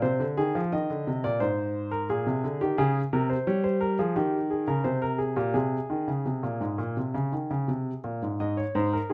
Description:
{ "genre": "classical, baroque-style two-part invention for grand piano", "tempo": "86 BPM", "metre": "4/4", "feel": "straight", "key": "Ab major", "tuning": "A4 = 436 Hz", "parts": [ { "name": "clear grand piano", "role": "solo", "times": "0.0-9.1 s", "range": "Ab2 to Eb5", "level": "-28 LUFS", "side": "equal", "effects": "none" } ], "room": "moderate large studio reverb, RT60 1.1 s", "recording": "nothing above 10.4 kHz", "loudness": "-28 LUFS", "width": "mono", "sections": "0.0-8.4 A section", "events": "none", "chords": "0.0 Ab/C; 1.4 Bb7/Ab; 2.8 Db5; 4.2 Eb; 5.5 Ab", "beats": "| 0.03 0.73 1.41 2.10 | 2.78 3.47 4.16 4.84 | 5.54 6.25 6.97 7.68 | 8.39 9.09" }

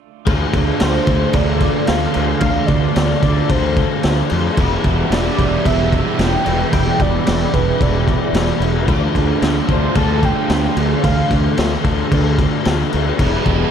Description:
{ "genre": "rock, shoegaze and dream pop", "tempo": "111 BPM", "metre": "4/4", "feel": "straight", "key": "D dorian", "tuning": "A4 = 439 Hz", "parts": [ { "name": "phased analog pad", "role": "sustained chords", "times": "0.7-13.7 s", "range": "D4 to C6", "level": "-28 LUFS", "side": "right 1 dB", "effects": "phaser, chorus" }, { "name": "crunchy overdriven guitar", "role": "riff", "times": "0.3-13.7 s", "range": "E2 to F4", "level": "-22 LUFS", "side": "left 14 dB", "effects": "analog chorus" }, { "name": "overdriven electric guitar", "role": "riff", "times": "0.3-13.7 s", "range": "E2 to F4", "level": "-22 LUFS", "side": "right 13 dB", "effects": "reverse reverb" }, { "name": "fuzz fingered electric bass", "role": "bass", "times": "0.3-13.6 s", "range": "E1 to F2", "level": "-19 LUFS", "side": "equal", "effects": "overdrive" }, { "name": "raw garage drum kit", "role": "drums", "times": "0.3-13.6 s", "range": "crash cymbal, kick drum, snare drum", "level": "-19 LUFS", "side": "equal", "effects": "none" }, { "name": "warm velvety synth lead", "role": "melody", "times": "0.8-11.5 s", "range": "B4 to A5", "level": "-24 LUFS", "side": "equal", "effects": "chorus, slapback echo" } ], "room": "small room ambience", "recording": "dark, warm production", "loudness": "-14 LUFS", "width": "side -8 dB against mid", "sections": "0.3-13.7 A section", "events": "none", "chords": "0.3 Dm7; 4.6 Em7; 8.9 Dm7; 13.2 Em7", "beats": "| 0.27 0.80 1.34 1.88 | 2.42 2.95 3.49 4.03 | 4.57 5.11 5.64 6.18 | 6.72 7.26 7.80 8.34 | 8.88 9.42 9.96 10.49 | 11.03 11.57 12.11 12.65 | 13.19" }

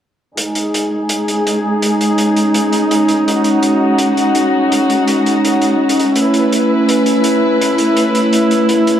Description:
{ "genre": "half-time drum and bass", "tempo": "166 BPM", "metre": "4/4", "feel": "half-time", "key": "G# phrygian", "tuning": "A4 = 440 Hz", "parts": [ { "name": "warm chamber string section", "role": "sustained chords", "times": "0.4-9.0 s", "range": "G#3 to B4", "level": "-13 LUFS", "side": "equal", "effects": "low-pass filter" }, { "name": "hi-hat", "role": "drums", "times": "0.4-8.9 s", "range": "none", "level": "-22 LUFS", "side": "equal", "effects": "none" }, { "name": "metallic inharmonic drone", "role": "texture", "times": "1.7-9.0 s", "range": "C#4", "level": "-17 LUFS", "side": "left 1 dB", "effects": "chorus, built-in reverb" } ], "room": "light reverb, small room ambience", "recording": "dark, warm production", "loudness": "-11 LUFS", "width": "side -10 dB against mid", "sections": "0.4-9.0 A section", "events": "filter sweep on string section 0.4-9.0", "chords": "0.4 G#5; 6.2 A", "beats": "| 0.38 0.74 1.10 1.46 | 1.82 2.18 2.54 2.91 | 3.27 3.63 3.99 4.35 | 4.71 5.08 5.44 5.80 | 6.16 6.52 6.88 7.24 | 7.61 7.97 8.33 8.69" }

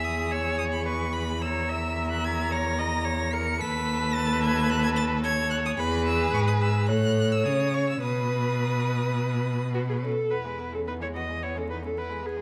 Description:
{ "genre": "quick classical-period movement for string quartet", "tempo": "109 BPM", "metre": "4/4", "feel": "straight", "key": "E major", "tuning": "A4 = 441 Hz", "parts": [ { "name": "clear violin", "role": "melody", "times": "0.0-12.4 s", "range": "B3 to C#7", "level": "-36 LUFS", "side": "equal", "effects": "none" }, { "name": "rich violin", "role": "second line", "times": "0.0-12.4 s", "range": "G#3 to C#5", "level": "-34 LUFS", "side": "equal", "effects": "none" }, { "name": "rich viola", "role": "accompaniment", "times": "0.0-12.4 s", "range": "F#4 to E5", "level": "-32 LUFS", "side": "equal", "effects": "none" }, { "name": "clear cello", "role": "bass", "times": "0.0-12.4 s", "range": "D#2 to C#3", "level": "-30 LUFS", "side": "equal", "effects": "none" } ], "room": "moderate recital hall reverb, RT60 1.7 s", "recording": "vinyl crackle", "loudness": "-27 LUFS", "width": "mono", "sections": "0.0-10.3 A section; 10.3-12.4 B section", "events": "none", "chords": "0.0 E; 1.4 F#13/E (rootless); 3.6 B7/D#; 5.8 E; 6.9 A; 8.0 B; 10.3 E", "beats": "0.31 0.86 | 1.42 1.97 2.52 3.06 | 3.61 4.16 4.70 5.24 | 5.79 6.34 6.89 7.45 | 8.02 8.59 9.17 9.74 | 10.31 10.87 11.43 11.98" }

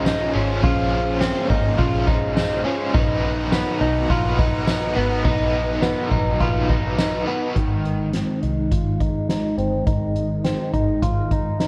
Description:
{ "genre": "dream pop", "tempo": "104 BPM", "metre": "4/4", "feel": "straight", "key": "unclear", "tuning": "A4 = 439 Hz", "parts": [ { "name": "overdriven electric guitar", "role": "accompaniment", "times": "0.0-8.1 s", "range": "Bb2 to C5", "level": "-28 LUFS", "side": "equal", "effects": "tremolo, subtle chorus" }, { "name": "string machine, violas", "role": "sustained chords", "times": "0.0-11.7 s", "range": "Eb3 to A#5", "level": "-29 LUFS", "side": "equal", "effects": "ensemble chorus, low-pass filter" }, { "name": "direct-recorded clean electric guitar", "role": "arpeggios", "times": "0.0-11.7 s", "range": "B3 to F4", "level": "-27 LUFS", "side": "equal", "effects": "lush chorus, low-pass filter, digital delay" }, { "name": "vintage muted fingered electric bass", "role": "bass", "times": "0.0-11.7 s", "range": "G1 to C2", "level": "-27 LUFS", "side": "equal", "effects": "none" }, { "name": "soft-mallet drum kit", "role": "drums", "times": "0.1-11.7 s", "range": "hi-hat, kick drum, ride cymbal, snare drum, tambourine", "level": "-26 LUFS", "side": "equal", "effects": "none" } ], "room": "moderate lush hall reverb, RT60 2.6 s", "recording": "worn, warbling old tape, cassette tape, warbly pitch drift", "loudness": "-21 LUFS", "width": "mono", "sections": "0.0-7.6 A section; 7.6-11.7 B section", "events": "none", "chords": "0.0 Bbmadd9; 2.9 Bmaj7; 7.6 Ab", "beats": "0.06 | 0.64 1.21 1.79 2.37 | 2.94 3.52 4.10 4.68 | 5.25 5.83 6.41 6.98 | 7.56 8.14 8.71 9.29 | 9.87 10.45 11.02 11.60" }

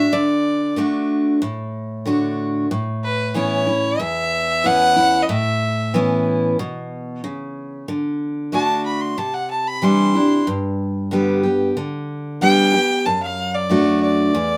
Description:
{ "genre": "country", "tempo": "93 BPM", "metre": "4/4", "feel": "straight", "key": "D major", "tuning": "A4 = 440 Hz", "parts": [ { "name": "clear fiddle", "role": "melody", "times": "0.0-14.6 s", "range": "B4 to C6", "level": "-22 LUFS", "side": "equal", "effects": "none" }, { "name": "picked steel-string acoustic guitar", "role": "accompaniment", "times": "0.0-14.6 s", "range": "E2 to G4", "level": "-21 LUFS", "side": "equal", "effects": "none" } ], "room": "moderate studio ambience, RT60 0.5 s", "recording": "none", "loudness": "-19 LUFS", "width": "mono", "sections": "0.0-7.9 A section; 7.9-14.6 B section", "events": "fiddle solo 7.9-14.6", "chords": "0.0 D; 2.7 Aadd9; 7.9 D; 9.2 Cadd9; 10.5 G; 13.1 D/F#", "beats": "| 0.12 0.77 1.41 2.06 | 2.71 3.35 4.00 4.65 | 5.30 5.94 6.59 7.24 | 7.89 8.53 9.18 9.83 | 10.47 11.12 11.77 12.42 | 13.06 13.71 14.36" }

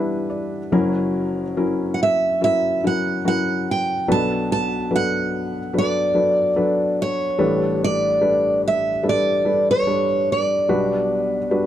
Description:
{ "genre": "acoustic folk-pop ballad", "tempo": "72 BPM", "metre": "4/4", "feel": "straight", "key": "unclear", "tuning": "A4 = 438 Hz", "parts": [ { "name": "felt-muted upright piano", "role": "accompaniment", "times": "0.0-11.7 s", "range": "F#1 to F#5", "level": "-21 LUFS", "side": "left 2 dB", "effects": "none" }, { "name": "picked steel-string acoustic guitar", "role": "melody", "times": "1.9-11.7 s", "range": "C#5 to A5", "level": "-20 LUFS", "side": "right 1 dB", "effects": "none" } ], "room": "small room ambience", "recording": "dry, close 1970s-style studio recording", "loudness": "-18 LUFS", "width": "side -11 dB against mid", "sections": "0.0-11.7 A section", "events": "none", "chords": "0.0 Em7; 0.7 F#7; 4.1 Bm7; 7.4 A9sus4; 10.7 Gmaj7/B", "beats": "| 0.73 1.57 2.41 3.25 | 4.08 4.91 5.74 6.57 | 7.39 8.22 9.04 9.87 | 10.69 11.52" }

